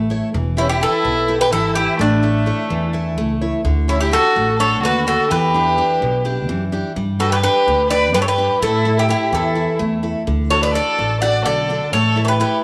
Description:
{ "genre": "greek folk, Greek bouzouki band", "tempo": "254 BPM (eighths)", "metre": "7/8", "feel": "straight", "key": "D major", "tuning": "A4 = 441 Hz", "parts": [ { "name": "picked steel-string acoustic guitar", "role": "accompaniment", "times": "0.0-12.6 s", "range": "B2 to C#5", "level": "-25 LUFS", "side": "equal", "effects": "none" }, { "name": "upright bass", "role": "bass", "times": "0.0-12.4 s", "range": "E1 to A2", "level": "-24 LUFS", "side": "equal", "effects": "none" }, { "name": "Greek bouzouki", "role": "melody", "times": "0.6-12.6 s", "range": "D4 to F#5", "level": "-21 LUFS", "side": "equal", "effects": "none" }, { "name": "clear violin", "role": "second line", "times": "0.6-12.6 s", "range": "A3 to D5", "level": "-23 LUFS", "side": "equal", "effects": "none" } ], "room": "moderate echo chamber reverb, RT60 2.0 s", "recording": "none", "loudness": "-17 LUFS", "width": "mono", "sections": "0.0-3.6 A section; 3.6-12.6 A section", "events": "none", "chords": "0.3 Em; 2.0 A; 3.6 D; 5.3 Em7; 7.0 G; 8.6 A; 10.3 D; 11.9 A" }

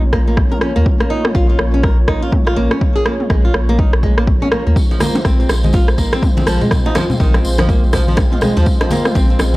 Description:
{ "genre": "afro house", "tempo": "123 BPM", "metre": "4/4", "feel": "swing 60% on 16ths", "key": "Bb minor", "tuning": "A4 = 440 Hz", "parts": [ { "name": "dark analog pad", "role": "sustained chords", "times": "0.0-9.6 s", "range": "Ab3 to Db5", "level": "-23 LUFS", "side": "equal", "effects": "chorus, sidechain pumping" }, { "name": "warm sub bass", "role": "bass", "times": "0.0-9.6 s", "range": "Bb1 to Eb2", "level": "-17 LUFS", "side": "equal", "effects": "sidechain pumping" }, { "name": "flamenco guitar", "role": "arpeggios", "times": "0.1-9.6 s", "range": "Eb3 to Bb4", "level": "-20 LUFS", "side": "right 1 dB", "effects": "sidechain pumping, tape echo" }, { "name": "deep house drum kit", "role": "drums", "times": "0.1-9.5 s", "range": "rim click, toms", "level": "-20 LUFS", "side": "equal", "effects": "overdrive, studio reverb" }, { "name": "electronic kick drum", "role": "drums", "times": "0.1-9.3 s", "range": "none", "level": "-15 LUFS", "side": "equal", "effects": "overdrive, studio reverb" }, { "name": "tambourine", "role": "percussion", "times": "4.8-9.6 s", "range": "none", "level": "-30 LUFS", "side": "left 2 dB", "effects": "none" }, { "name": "bongos", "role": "percussion", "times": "4.9-9.5 s", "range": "none", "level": "-24 LUFS", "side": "right 1 dB", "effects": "none" }, { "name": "congas", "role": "percussion", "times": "5.0-9.6 s", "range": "none", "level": "-22 LUFS", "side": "left 2 dB", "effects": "none" } ], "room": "small room reverb", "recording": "dry, gritty hardware recording, cassette tape", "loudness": "-12 LUFS", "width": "side -19 dB against mid", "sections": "0.0-9.6 A section", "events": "none", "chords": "0.0 Bbm; 4.8 Fm/Bb" }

